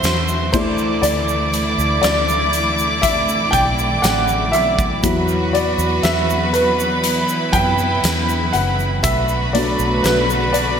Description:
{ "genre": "pop ballad", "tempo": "60 BPM", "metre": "4/4", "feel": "straight", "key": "unclear", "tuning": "A4 = 440 Hz", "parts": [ { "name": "warm chamber violin section", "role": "second line", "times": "0.0-10.8 s", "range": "B4 to D6", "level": "-21 LUFS", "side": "right 2 dB", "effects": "digital delay" }, { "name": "dark baby grand piano", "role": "accompaniment", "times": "0.0-10.8 s", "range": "F#3 to G5", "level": "-20 LUFS", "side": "left 1 dB", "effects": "lush chorus" }, { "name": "rich studio string section", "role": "sustained chords", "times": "0.0-10.8 s", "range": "B2 to F#4", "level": "-23 LUFS", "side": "left 1 dB", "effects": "none" }, { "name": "vintage muted fingered electric bass", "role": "bass", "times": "0.0-10.8 s", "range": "F#1 to F#2", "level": "-23 LUFS", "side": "equal", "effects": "none" }, { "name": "huge arena drum kit", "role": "drums", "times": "0.0-10.8 s", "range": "crash cymbal, hi-hat, kick drum, snare drum", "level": "-23 LUFS", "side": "left 1 dB", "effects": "gated reverb" }, { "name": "egg shaker", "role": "percussion", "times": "0.0-10.8 s", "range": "none", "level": "-29 LUFS", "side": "right 7 dB", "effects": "none" } ], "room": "moderate plate reverb, RT60 3.0 s", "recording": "bright 1980s-style digital production", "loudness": "-15 LUFS", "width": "side -7 dB against mid", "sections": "0.0-10.8 A section", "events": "grand piano solo 0.0-10.8", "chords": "0.0 Esus2; 0.5 Dsus2; 5.0 Esus2; 9.0 Bm7" }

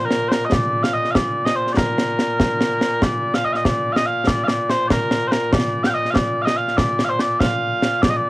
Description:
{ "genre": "scottish traditional, Scottish pipe music", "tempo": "96 BPM (dotted quarters)", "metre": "6/8", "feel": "straight", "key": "Bb major", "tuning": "A4 = 440 Hz", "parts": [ { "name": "mellow small bagpipes", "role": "melody", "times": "0.0-8.3 s", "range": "Bb2 to G5", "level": "-19 LUFS", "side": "equal", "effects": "plate reverb" }, { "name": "concert snare drum and concert bass drum", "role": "drums", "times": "0.1-8.1 s", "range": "none", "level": "-20 LUFS", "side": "equal", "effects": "cassette tape" } ], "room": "moderate booth ambience, RT60 0.2 s", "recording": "home recording on cassette", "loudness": "-17 LUFS", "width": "side -19 dB against mid", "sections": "0.0-3.0 A section; 3.0-8.3 A section", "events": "none", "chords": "none" }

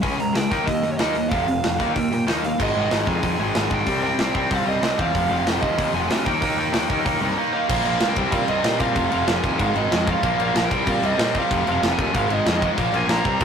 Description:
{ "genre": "punk rock", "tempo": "188 BPM", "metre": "4/4", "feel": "straight", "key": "F minor", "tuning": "A4 = 440 Hz", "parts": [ { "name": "dark smooth lead guitar", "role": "melody", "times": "0.0-13.4 s", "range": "Db5 to Bb5", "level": "-25 LUFS", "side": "right 4 dB", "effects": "overdrive" }, { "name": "distorted electric guitar", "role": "riff", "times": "0.0-13.4 s", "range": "F2 to Eb4", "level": "-25 LUFS", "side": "left 7 dB", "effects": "overdrive" }, { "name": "overdriven electric guitar", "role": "riff", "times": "0.0-13.4 s", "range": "F2 to Eb4", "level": "-26 LUFS", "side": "right 5 dB", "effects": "none" }, { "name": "fuzz picked electric bass", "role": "bass", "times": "0.0-13.4 s", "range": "F1 to Bb2", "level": "-26 LUFS", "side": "equal", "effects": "overdrive" }, { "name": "tight metal drum kit", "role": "drums", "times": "0.0-13.4 s", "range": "crash cymbal, hi-hat, kick drum, snare drum", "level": "-25 LUFS", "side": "equal", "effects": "none" } ], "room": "moderate studio ambience, RT60 0.5 s", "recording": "rough rehearsal-room recording, tube saturation", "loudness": "-19 LUFS", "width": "side -7 dB against mid", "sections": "0.0-2.6 A section; 2.6-7.7 B section; 7.7-13.4 C section", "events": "none", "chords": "0.0 Db5; 0.5 Eb5; 1.3 F5; 1.8 Eb; 2.6 Ab5; 3.9 Cm; 5.1 F5; 6.3 Eb; 7.7 Bbm; 8.2 Cm; 9.0 F5; 9.6 Ab5; 10.2 Bb5; 10.7 Cm; 11.5 F5; 12.1 Ab5; 12.8 Bb5" }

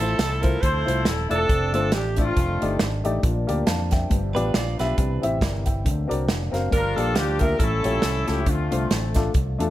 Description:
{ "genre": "uptempo gospel", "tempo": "138 BPM", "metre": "4/4", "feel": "swing 57% on 8ths", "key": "F major", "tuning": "A4 = 440 Hz", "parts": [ { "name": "clear alto saxophone", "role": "melody", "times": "0.0-2.8, 6.7-8.9 s", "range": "E4 to C5", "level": "-27 LUFS", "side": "right 3 dB", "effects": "none" }, { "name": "warm horn section", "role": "melody", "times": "0.0-3.0, 6.7-9.3 s", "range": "A3 to C5", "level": "-28 LUFS", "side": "left 3 dB", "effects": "none" }, { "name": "dark upright piano", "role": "accompaniment", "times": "0.0-9.7 s", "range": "G2 to A5", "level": "-27 LUFS", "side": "left 3 dB", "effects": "none" }, { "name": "mellow French horn section", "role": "sustained chords", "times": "0.0-9.7 s", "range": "D3 to E4", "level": "-35 LUFS", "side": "equal", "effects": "none" }, { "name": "fingered electric bass", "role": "bass", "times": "0.0-9.7 s", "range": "Eb1 to F2", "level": "-26 LUFS", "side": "equal", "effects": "none" }, { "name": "natural country drum kit", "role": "drums", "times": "0.0-9.7 s", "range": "hi-hat, kick drum, snare drum", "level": "-24 LUFS", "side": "right 1 dB", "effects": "none" }, { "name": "direct-recorded clean electric guitar", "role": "second line", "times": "4.3-5.2 s", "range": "D4 to D5", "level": "-31 LUFS", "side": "right 6 dB", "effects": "warbly pitch drift" } ], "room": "small room ambience", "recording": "none", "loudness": "-20 LUFS", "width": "side -14 dB against mid", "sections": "0.0-9.7 A section", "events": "none", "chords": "0.0 Fmaj7; 1.5 Dm7/F; 2.4 F13; 3.2 Bb6; 4.1 G7; 5.0 C; 5.9 D7alt; 6.7 Gm7; 7.6 A7b13; 8.5 Dm7" }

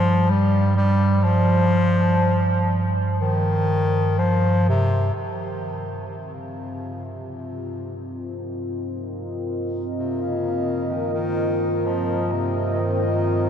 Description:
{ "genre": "dark ambient drone", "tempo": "63 BPM", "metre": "4/4", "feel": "straight", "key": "C phrygian", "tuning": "A4 = 440 Hz", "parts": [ { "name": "warm bass clarinet", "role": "melody", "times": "0.0-13.5 s", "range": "C3 to G3", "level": "-23 LUFS", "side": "left 2 dB", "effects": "ping-pong delay" }, { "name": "deep rumbling drone", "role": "drone", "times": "0.0-13.5 s", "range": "G2", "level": "-24 LUFS", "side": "right 2 dB", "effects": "built-in reverb" }, { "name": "deep dark ambient pad", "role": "sustained chords", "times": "6.4-13.5 s", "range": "C4 to Eb5", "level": "-25 LUFS", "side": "left 1 dB", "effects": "chorus, built-in reverb" }, { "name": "bronze singing bowl", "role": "texture", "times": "12.8-13.5 s", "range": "C5", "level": "-33 LUFS", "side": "right 1 dB", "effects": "none" } ], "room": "wet huge ambient reverb, RT60 8.8 s", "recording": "cassette tape", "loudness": "-19 LUFS", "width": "side -9 dB against mid", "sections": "0.0-5.2 A section; 5.2-13.5 B section", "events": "fade-in on synth drone 5.2-13.5; fade-in on bass clarinet 5.2-13.5", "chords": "0.0 N.C.; 5.2 Cm" }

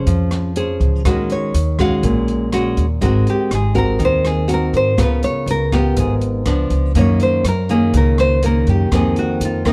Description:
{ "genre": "bossa nova", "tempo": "122 BPM", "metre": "4/4", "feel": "straight", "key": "unclear", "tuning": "A4 = 438 Hz", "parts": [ { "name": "nylon-string guitar", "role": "accompaniment", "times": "0.0-9.7 s", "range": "F2 to C5", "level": "-21 LUFS", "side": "equal", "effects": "none" }, { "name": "upright bass", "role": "bass", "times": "0.0-9.7 s", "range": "Ab1 to Ab2", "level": "-21 LUFS", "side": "equal", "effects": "none" }, { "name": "open jazz drum kit", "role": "drums", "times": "0.1-9.7 s", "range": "hi-hat, kick drum, rim click", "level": "-26 LUFS", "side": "equal", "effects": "none" }, { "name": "nylon-string guitar", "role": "melody", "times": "1.3-9.7 s", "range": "Eb4 to F5", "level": "-23 LUFS", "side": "equal", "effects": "plate reverb" } ], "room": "light reverb", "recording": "none", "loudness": "-17 LUFS", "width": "mono", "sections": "0.0-9.7 A section", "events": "nylon-string guitar solo 0.0-9.7", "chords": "0.0 Dbmaj7/F; 1.1 Ebm7; 3.0 Ab9; 5.0 Db6; 6.5 Db7b9; 7.0 Gb6; 8.9 F7sus4" }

